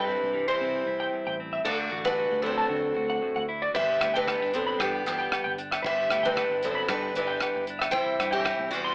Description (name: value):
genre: highlife guitar band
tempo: 115 BPM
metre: 4/4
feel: swing 53% on 16ths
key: G major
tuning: A4 = 440 Hz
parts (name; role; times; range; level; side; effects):
- picked steel-string acoustic guitar; melody; 0.0-8.9 s; B3 to G5; -30 LUFS; equal; none
- sitar; second line; 0.0-8.9 s; E3 to E4; -38 LUFS; equal; none
- clean electric guitar; accompaniment; 0.0-8.9 s; G2 to F#4; -38 LUFS; equal; none
- electric guitar at the edge of break-up; arpeggios; 0.0-8.9 s; A4 to C6; -34 LUFS; equal; analog chorus
- fingered electric bass; bass; 0.0-8.9 s; G1 to D3; -44 LUFS; equal; none
- damped 70s drum kit; drums; 3.7-8.9 s; hi-hat, kick drum, rim click; -34 LUFS; equal; none
- agogo bells; percussion; 4.0-8.6 s; none; -37 LUFS; equal; none
room: moderate studio ambience, RT60 0.5 s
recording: AM radio sound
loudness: -27 LUFS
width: mono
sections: 0.0-8.9 A section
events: none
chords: 0.0 C; 1.7 D; 3.8 G6; 7.9 C